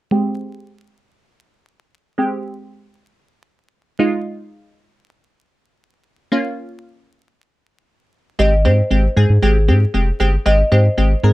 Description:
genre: dance-pop.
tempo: 116 BPM.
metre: 4/4.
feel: straight.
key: Ab major.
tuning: A4 = 440 Hz.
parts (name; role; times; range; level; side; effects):
wavetable chord stab; accompaniment; 0.1-11.3 s; Ab3 to Bb4; -19 LUFS; right 1 dB; low-pass filter.
marimba with soft mallets; melody; 8.4-11.3 s; Ab4 to Eb5; -20 LUFS; equal; tape echo.
round analog bass; bass; 8.4-11.3 s; F1 to Ab2; -14 LUFS; equal; none.
room: little or no reverb.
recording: vinyl crackle.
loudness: -14 LUFS.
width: side -18 dB against mid.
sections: 0.1-8.4 A section; 8.4-11.3 B section.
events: filter sweep on synth stab 0.1-8.4.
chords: 0.1 Abmaj7; 4.0 Fm7/Ab; 6.3 Db6; 8.4 Abmaj7.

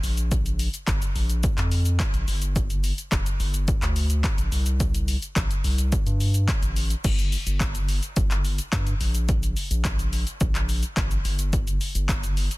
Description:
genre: dance-pop.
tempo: 107 BPM.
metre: 4/4.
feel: straight.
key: unclear.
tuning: A4 = 440 Hz.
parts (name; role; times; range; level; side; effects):
round analog bass; bass; 0.0-12.5 s; F1 to G2; -24 LUFS; equal; sidechain pumping.
punchy analog drum machine; drums; 0.0-12.6 s; crash cymbal, handclaps, hi-hat, kick drum, shaker; -24 LUFS; equal; soft clipping on snare.
room: little or no reverb.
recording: dense, heavily limited modern master.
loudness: -22 LUFS.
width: side -21 dB against mid.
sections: 0.0-7.0 A section; 7.0-12.6 B section.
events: none.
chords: none.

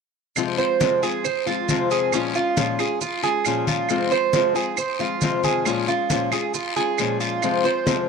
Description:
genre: latin, Cuban son and guajira.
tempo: 136 BPM.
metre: 4/4.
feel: straight.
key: F minor.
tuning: A4 = 439 Hz.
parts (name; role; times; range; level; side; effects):
nylon-string guitar; accompaniment; 0.4-8.1 s; F2 to F4; -24 LUFS; left 10 dB; none.
claves; percussion; 0.4-7.6 s; none; -30 LUFS; right 9 dB; none.
congas; percussion; 0.4-8.1 s; none; -27 LUFS; left 2 dB; none.
guiro; percussion; 0.4-8.1 s; none; -31 LUFS; left 12 dB; none.
maracas; percussion; 0.4-8.1 s; none; -34 LUFS; right 12 dB; none.
Cuban tres; arpeggios; 0.6-8.1 s; Db4 to C5; -22 LUFS; right 8 dB; none.
room: moderate plate reverb, RT60 2.7 s.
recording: 1960s-style stereo with parts hard left and right.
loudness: -20 LUFS.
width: side -5 dB against mid.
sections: 0.4-8.1 A section.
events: none.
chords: 0.4 Fm; 2.1 Bbm7; 3.9 Fm; 5.7 Bbm7; 7.4 Fm.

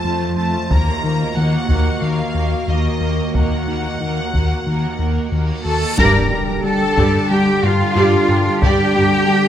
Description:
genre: cinematic, hybrid orchestral and electronic film score.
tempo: 91 BPM.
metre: 4/4.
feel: straight.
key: G minor.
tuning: A4 = 440 Hz.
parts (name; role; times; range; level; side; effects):
rich symphonic violin section; melody; 0.0-9.0 s; G4 to Bb5; -27 LUFS; left 1 dB; none.
warm symphonic viola section; accompaniment; 0.0-9.0 s; G3 to Bb4; -25 LUFS; right 1 dB; none.
warbly tape-like pad; sustained chords; 0.0-9.5 s; D3 to G5; -24 LUFS; right 1 dB; chorus, built-in reverb.
smooth synth bass; riff; 0.0-9.5 s; Eb2 to G3; -20 LUFS; left 2 dB; none.
warm studio cello section; bass; 0.1-9.5 s; Eb2 to Bb4; -20 LUFS; right 1 dB; none.
solo taiko drums; drums; 0.7-9.2 s; none; -20 LUFS; equal; none.
reverse cymbal and impact; sound effects; 5.6-8.6 s; none; -26 LUFS; equal; none.
warm symphonic violin section; second line; 5.7-9.5 s; F5 to Bb5; -25 LUFS; left 2 dB; none.
mellow French horn section; sustained chords; 6.0-9.5 s; G3 to D4; -22 LUFS; left 1 dB; none.
warm symphonic double bass section; bass; 6.0-9.0 s; G2; -24 LUFS; right 3 dB; none.
room: moderate scoring stage reverb, RT60 1.9 s.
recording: none.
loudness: -14 LUFS.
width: side -10 dB against mid.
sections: 0.0-6.0 A section; 6.0-9.5 A section.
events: reverse cymbal 5.6-6.0; band accent 6.0-6.6; impact 6.0-8.6.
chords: 0.0 F; 0.7 Ebm; 6.0 Gm.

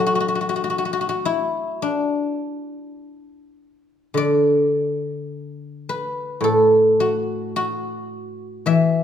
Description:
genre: chinese traditional, Chinese solo plucked strings.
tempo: 50-56 BPM.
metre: 4/4.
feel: rubato.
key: D gong mode.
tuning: A4 = 438 Hz.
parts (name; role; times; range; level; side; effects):
guzheng; solo; 0.0-9.0 s; A2 to E5; -19 LUFS; left 1 dB; none.
room: moderate recital hall reverb, RT60 1.7 s.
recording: minimal, uncompressed stereo recording.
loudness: -18 LUFS.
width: side -9 dB against mid.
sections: 0.0-4.2 A section; 4.2-9.0 B section.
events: none.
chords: none.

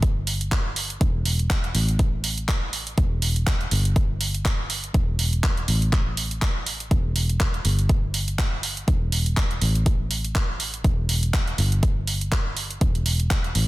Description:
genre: piano house.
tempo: 122 BPM.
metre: 4/4.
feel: swing 56% on 16ths.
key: E minor.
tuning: A4 = 435 Hz.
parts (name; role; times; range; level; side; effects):
fingered electric bass; bass; 0.0-13.7 s; E1 to A1; -24 LUFS; equal; sidechain pumping.
electronic kick drum; drums; 0.0-13.4 s; none; -22 LUFS; equal; none.
house drum kit; drums; 0.0-13.7 s; handclaps, hi-hat; -27 LUFS; right 2 dB; soft clipping on snare.
room: little or no reverb.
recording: dense, heavily limited modern master.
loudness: -21 LUFS.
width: side -18 dB against mid.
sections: 0.0-13.7 A section.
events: none.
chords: none.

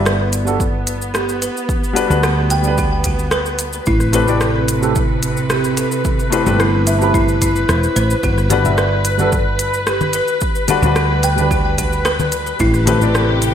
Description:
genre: sunset chillout.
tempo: 110 BPM.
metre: 4/4.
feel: straight.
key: G major.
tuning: A4 = 440 Hz.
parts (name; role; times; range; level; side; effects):
warm baby grand piano; accompaniment; 0.0-13.2 s; G3 to B5; -20 LUFS; moving between left 6 dB and right 5 dB; auto-pan, ping-pong delay.
warm studio string section; sustained chords; 0.0-13.5 s; C3 to B4; -21 LUFS; equal; none.
buzzing kalimba; arpeggios; 0.0-13.4 s; E4 to G5; -22 LUFS; equal; ping-pong delay.
woody fretless electric bass; bass; 0.0-13.5 s; E1 to D2; -18 LUFS; equal; none.
smooth R&B drum kit; drums; 0.1-13.5 s; hi-hat, rim click, shaker; -23 LUFS; equal; small room ambience.
electronic kick drum; drums; 0.6-12.7 s; none; -21 LUFS; equal; overdrive, small room ambience.
congas; percussion; 8.5-13.1 s; none; -24 LUFS; left 3 dB; none.
room: moderate plate reverb, RT60 1.5 s, studio reverb.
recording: bright 1980s-style digital production.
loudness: -14 LUFS.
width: side -9 dB against mid.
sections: 0.0-13.5 A section.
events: none.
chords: 0.0 Gmaj7; 3.9 Am9; 8.2 Gmaj7; 12.6 Am9.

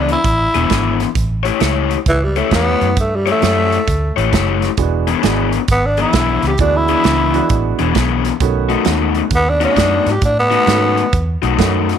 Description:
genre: electric blues shuffle.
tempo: 132 BPM.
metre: 4/4.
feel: swing 65% on 8ths.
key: E mixolydian.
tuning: A4 = 438 Hz.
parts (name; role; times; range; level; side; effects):
growling tenor saxophone; melody; 0.0-11.3 s; E3 to G4; -16 LUFS; equal; none.
raw garage guitar; riff; 0.0-11.9 s; B2 to C#5; -18 LUFS; left 14 dB; overdrive.
vintage muted fingered electric bass; bass; 0.0-11.9 s; E1 to A2; -19 LUFS; right 1 dB; none.
natural country drum kit; drums; 0.1-12.0 s; hi-hat, kick drum, snare drum; -20 LUFS; right 4 dB; none.
clear upright piano; accompaniment; 4.8-11.9 s; D#3 to A4; -21 LUFS; right 13 dB; none.
room: light reverb, studio reverb.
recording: 1960s-style stereo with parts hard left and right.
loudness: -13 LUFS.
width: side -8 dB against mid.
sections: 0.0-12.0 A section.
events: tenor saxophone solo 0.0-12.0.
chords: 0.0 E7; 1.2 A7; 4.8 E7; 8.4 B7.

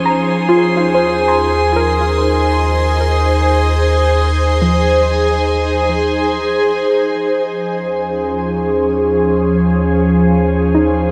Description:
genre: ambient.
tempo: 73 BPM.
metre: 4/4.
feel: straight.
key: unclear.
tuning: A4 = 440 Hz.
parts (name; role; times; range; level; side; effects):
ethereal airy pad; sustained chords; 0.0-11.1 s; F3 to C5; -17 LUFS; equal; ensemble chorus, built-in reverb, phaser.
soft round pluck; arpeggios; 0.0-11.1 s; F3 to C6; -21 LUFS; equal; analog chorus, delay.
deep rumbling drone; bass; 1.1-11.1 s; Eb2; -21 LUFS; equal; built-in reverb.
drifting glass-harmonics texture; texture; 0.0-11.1 s; Ab4 to Ab5; -23 LUFS; equal; chorus, built-in reverb.
room: wet huge ambient reverb, RT60 6.9 s.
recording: dreamy mix soaked in reverb.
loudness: -15 LUFS.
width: mono.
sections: 0.0-6.9 A section; 6.9-11.1 B section.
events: filter sweep on ambient pad 6.9-11.1.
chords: 0.3 Ab/Eb; 6.9 Dbmaj7/Eb.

